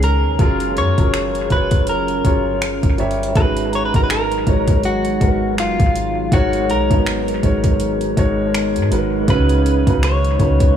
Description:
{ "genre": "contemporary R&B", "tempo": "81 BPM", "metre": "4/4", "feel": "swing 58% on 16ths", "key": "G# dorian", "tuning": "A4 = 440 Hz", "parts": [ { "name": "direct-recorded clean electric guitar", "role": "melody", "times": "0.0-10.7 s", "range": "E#4 to C#5", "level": "-22 LUFS", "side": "equal", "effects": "analog delay" }, { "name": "warm grand piano", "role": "accompaniment", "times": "0.0-10.8 s", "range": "C#3 to E5", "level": "-20 LUFS", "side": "right 1 dB", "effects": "analog delay" }, { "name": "deep dark ambient pad", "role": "sustained chords", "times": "0.0-10.8 s", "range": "C#3 to G#4", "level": "-26 LUFS", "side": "equal", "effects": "chorus, built-in reverb" }, { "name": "soft 808-style bass", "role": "bass", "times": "0.0-10.8 s", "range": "F#1 to G#2", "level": "-20 LUFS", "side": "equal", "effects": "none" }, { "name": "smooth R&B drum kit", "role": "drums", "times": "0.0-10.8 s", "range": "finger snaps, hi-hat, kick drum", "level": "-18 LUFS", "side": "equal", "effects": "none" }, { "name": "soft synth bell", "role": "texture", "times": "3.7-6.6 s", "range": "A#5", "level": "-34 LUFS", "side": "right 2 dB", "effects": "none" } ], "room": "digital ambience", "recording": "echo-heavy mix, small room ambience", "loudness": "-14 LUFS", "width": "side -9 dB against mid", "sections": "0.0-10.8 A section", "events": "none", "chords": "0.4 F#maj7; 2.6 Gdim7; 3.4 G#m9; 9.3 C#9sus4" }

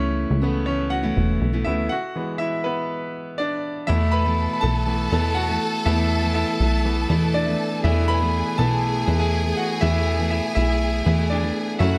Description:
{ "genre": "pop", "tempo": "121 BPM", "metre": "4/4", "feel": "straight", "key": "unclear", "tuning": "A4 = 440 Hz", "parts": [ { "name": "bright concert grand piano", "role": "accompaniment", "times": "0.0-12.0 s", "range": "C#3 to B5", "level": "-28 LUFS", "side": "equal", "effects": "none" }, { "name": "fingerpicked steel-string acoustic guitar", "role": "riff", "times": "0.0-12.0 s", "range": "E2 to F#4", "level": "-29 LUFS", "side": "equal", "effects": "none" }, { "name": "plucky analog bass", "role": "bass", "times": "0.0-12.0 s", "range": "E1 to F#2", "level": "-24 LUFS", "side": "equal", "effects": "none" }, { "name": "rich studio violin section", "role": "second line", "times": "3.9-12.0 s", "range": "F#4 to A5", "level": "-30 LUFS", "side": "equal", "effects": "delay" } ], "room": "light reverb, studio reverb", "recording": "none", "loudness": "-22 LUFS", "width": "mono", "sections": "0.0-3.9 A section; 3.9-12.0 B section", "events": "grand piano solo 0.0-3.9, 3.9-12.0; stop 1.9-3.9", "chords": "0.0 Aadd9/C#; 1.9 E; 3.9 Esus4" }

